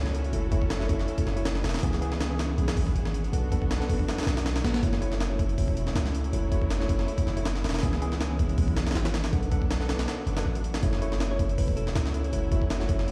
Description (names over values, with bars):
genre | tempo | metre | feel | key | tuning
drum and bass, jungle | 160 BPM | 4/4 | straight | F# minor | A4 = 440 Hz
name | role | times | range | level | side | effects
warm chamber string section | sustained chords | 0.0-13.1 s | F#3 to A4 | -40 LUFS | equal | none
tine electric piano | stabs | 0.0-13.1 s | E3 to F#5 | -36 LUFS | equal | vintage 12-bit sampler grit, dub echo
long sustained 808-style bass | bass | 0.0-13.1 s | E1 to C#2 | -31 LUFS | equal | tube saturation
jungle sampler-style drum kit | drums | 0.1-13.1 s | hi-hat, kick drum, snare drum | -31 LUFS | equal | overdrive
thumb-piano-like synth pluck | melody | 11.3-13.0 s | F#4 to C#5 | -40 LUFS | equal | chorus, phaser, dub echo
room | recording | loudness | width
little or no reverb | played on a big sound system in a bare room, large studio reverb, vinyl crackle | -27 LUFS | mono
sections
0.0-13.1 A section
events
break 10.1-10.8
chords
0.0 F#m7; 1.8 C#m7; 3.3 Bm7; 4.8 F#m7; 7.8 C#m7; 9.3 Bm7; 10.8 F#m7